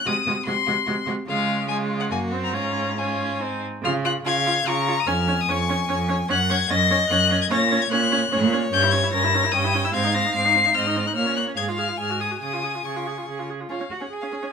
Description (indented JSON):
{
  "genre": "quick classical-period movement for string quartet",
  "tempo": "146 BPM",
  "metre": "3/4",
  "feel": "rubato",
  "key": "Db major",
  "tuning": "A4 = 440 Hz",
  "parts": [
    { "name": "rich violin", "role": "melody", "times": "0.0-14.5 s", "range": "F5 to C7", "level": "-23 LUFS", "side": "left 7 dB", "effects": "none" },
    { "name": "clear violin", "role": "second line", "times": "0.1-14.5 s", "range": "Eb4 to Bb5", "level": "-28 LUFS", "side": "left 2 dB", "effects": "none" },
    { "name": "rich viola", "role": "accompaniment", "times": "0.1-14.5 s", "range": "Ab3 to Ab4", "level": "-27 LUFS", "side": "right 2 dB", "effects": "none" },
    { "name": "rich cello", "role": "bass", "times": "0.1-14.5 s", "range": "F2 to Ab4", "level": "-26 LUFS", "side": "right 3 dB", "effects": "none" }
  ],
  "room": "light reverb",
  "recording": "minimal, uncompressed stereo recording",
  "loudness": "-20 LUFS",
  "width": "side -6 dB against mid",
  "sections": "0.0-3.8 A section; 3.8-13.7 B section",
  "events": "none",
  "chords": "0.1 Ab7/C; 1.3 Db; 2.1 Gb; 2.5 Db/Ab; 3.4 Ab; 3.8 Db; 5.1 Db/F; 6.3 Gb; 7.5 Gb/Bb; 8.7 Gdim7; 9.9 Ab; 11.2 Bbm; 11.6 Fm/Ab; 12.0 Ab5; 12.4 Db",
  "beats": "| 0.07 0.47 0.88 | 1.28 1.69 2.11 | 2.54 2.97 3.40 | 3.83 4.25 4.66 | 5.07 5.49 5.89 | 6.30 6.71 7.11 | 7.52 7.92 8.33 | 8.73 9.13 9.54 | 9.94 10.34 10.75 | 11.16 11.57 11.99 | 12.41 12.84 13.27 | 13.69 14.11 14.52"
}